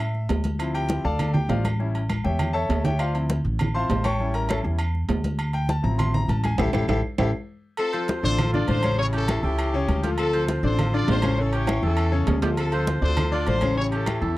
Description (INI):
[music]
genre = latin, salsa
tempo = 200 BPM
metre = 4/4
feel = straight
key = D minor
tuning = A4 = 441 Hz
[part]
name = bright concert grand piano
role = accompaniment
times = 0.0-14.4 s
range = C#3 to C#6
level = -27 LUFS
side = left 3 dB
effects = none
[part]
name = upright bass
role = bass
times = 0.0-14.4 s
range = A1 to A2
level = -24 LUFS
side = equal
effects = none
[part]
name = claves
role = percussion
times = 0.0-14.2 s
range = none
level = -40 LUFS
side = right 4 dB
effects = none
[part]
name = congas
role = percussion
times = 0.0-14.2 s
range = none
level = -28 LUFS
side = equal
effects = none
[part]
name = timbales and agogo bells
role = percussion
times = 0.3-14.2 s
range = none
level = -32 LUFS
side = right 4 dB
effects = none
[part]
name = warm horn section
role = melody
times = 7.8-14.4 s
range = C4 to D5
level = -27 LUFS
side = left 2 dB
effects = none
[part]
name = clear oboe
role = second line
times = 7.9-14.4 s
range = F4 to C5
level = -32 LUFS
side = right 4 dB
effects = none
[sound]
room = light reverb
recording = dry, close 1970s-style studio recording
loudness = -21 LUFS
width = side -17 dB against mid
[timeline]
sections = 0.0-7.8 A section; 7.8-14.4 B section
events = grand piano solo 0.0-7.8; drum fill 2.1-3.0, 11.7-12.6; band accent 6.6-7.8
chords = 0.0 A5; 0.6 Dm7; 1.8 A7; 3.0 Dm7; 4.2 A7; 5.4 Dm7; 6.6 A5; 7.8 Dm7; 9.0 A7; 10.2 Dm7; 11.4 A7; 12.6 Dm7; 13.8 A7